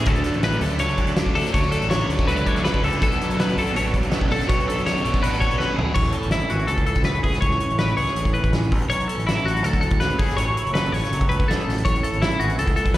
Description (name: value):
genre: math rock and midwest emo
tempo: 163 BPM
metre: 4/4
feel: straight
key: A major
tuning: A4 = 440 Hz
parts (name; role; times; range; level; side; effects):
- twangy electric guitar; accompaniment; 0.0-13.0 s; F#2 to A4; -30 LUFS; right 5 dB; ensemble chorus, slapback echo
- twelve-string electric guitar; arpeggios; 0.0-13.0 s; E4 to C#5; -24 LUFS; left 2 dB; slapback echo
- overdriven electric guitar; riff; 0.0-6.0 s; B2 to D4; -25 LUFS; equal; phaser, slapback echo
- fuzz fingered electric bass; bass; 0.1-13.0 s; F#1 to F#2; -25 LUFS; equal; overdrive
- loose indie drum kit; drums; 0.1-13.0 s; crash cymbal, hi-hat, kick drum, snare drum, toms; -24 LUFS; equal; none
room: small room ambience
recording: live gig heard through the venue's PA, recital hall reverb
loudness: -19 LUFS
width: side -15 dB against mid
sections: 0.0-6.0 A section; 6.0-13.0 B section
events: drum fill 5.6-6.0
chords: 0.1 Dmaj7; 3.0 Bm9; 6.0 Amaj9; 8.7 Bm9; 10.2 F#m7; 11.8 Amaj7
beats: | 0.07 0.44 0.81 1.17 | 1.54 1.91 2.28 2.65 | 3.02 3.38 3.75 4.12 | 4.49 4.86 5.22 5.59 | 5.96 6.33 6.70 7.07 | 7.44 7.80 8.17 8.54 | 8.91 9.28 9.64 10.01 | 10.38 10.75 11.12 11.48 | 11.85 12.22 12.59 12.95